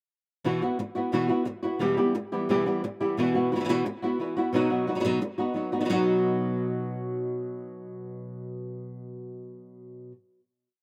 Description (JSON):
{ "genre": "flamenco", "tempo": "176 BPM", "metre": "4/4", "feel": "straight", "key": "B major", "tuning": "A4 = 441 Hz", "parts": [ { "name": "flamenco guitar", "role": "accompaniment", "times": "0.4-10.1 s", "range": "B2 to G4", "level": "-30 LUFS", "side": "equal", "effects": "slapback echo" }, { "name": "flamenco guitar", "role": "stabs", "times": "0.4-10.1 s", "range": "E2 to F#4", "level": "-33 LUFS", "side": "equal", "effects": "none" } ], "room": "little or no reverb", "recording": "recorded outdoors, with no room sound", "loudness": "-27 LUFS", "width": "mono", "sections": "0.5-5.9 groove; 5.9-8.6 final chord", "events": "none", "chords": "0.5 Bsus4; 1.8 Em; 3.2 Bsus4; 4.5 B", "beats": "| 0.45 0.79 1.14 1.48 | 1.82 2.16 2.50 2.84 | 3.18 3.52 3.86 4.20 | 4.54 4.88 5.22 5.56 | 5.89 6.23 6.57 6.91 | 7.25 7.59 7.93 8.27" }